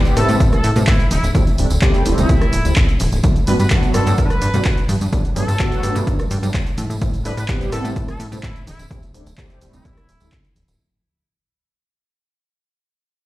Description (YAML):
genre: filtered disco house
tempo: 127 BPM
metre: 4/4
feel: straight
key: unclear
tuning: A4 = 440 Hz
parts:
  - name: mellow synth brass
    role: accompaniment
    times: 0.0-10.3 s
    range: F#3 to G4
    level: -24 LUFS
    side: right 1 dB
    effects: chorus, phaser, sidechain pumping
  - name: plucky analog bass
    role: bass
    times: 0.0-10.8 s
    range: D1 to A2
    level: -20 LUFS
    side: equal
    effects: sidechain pumping
  - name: punchy analog drum machine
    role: drums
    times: 0.1-10.8 s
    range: handclaps, hi-hat, rim click, shaker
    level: -26 LUFS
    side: right 1 dB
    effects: overdrive
  - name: tambourine and congas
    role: percussion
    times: 0.1-10.8 s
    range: none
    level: -29 LUFS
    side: right 1 dB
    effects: sidechain pumping on perc
  - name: warm trumpet section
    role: melody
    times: 0.2-10.4 s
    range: E4 to B4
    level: -26 LUFS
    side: equal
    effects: sidechain pumping, digital delay
  - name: electronic kick drum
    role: drums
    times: 0.4-10.4 s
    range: none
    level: -18 LUFS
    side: equal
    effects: overdrive
room: little or no reverb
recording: played on a big sound system in a bare room, large studio reverb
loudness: -15 LUFS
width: side -16 dB against mid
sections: 0.0-10.8 A section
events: drop 0.0-10.8; fade-out 3.2-10.8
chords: 0.0 Am9; 1.1 D9sus4; 3.2 Gmaj9; 6.8 Am9; 8.7 D9sus4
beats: 0.40 0.88 | 1.35 1.82 2.29 2.77 | 3.24 3.71 4.18 4.65 | 5.13 5.60 6.07 6.54 | 7.02 7.49 7.96 8.43 | 8.91 9.38 9.85 10.32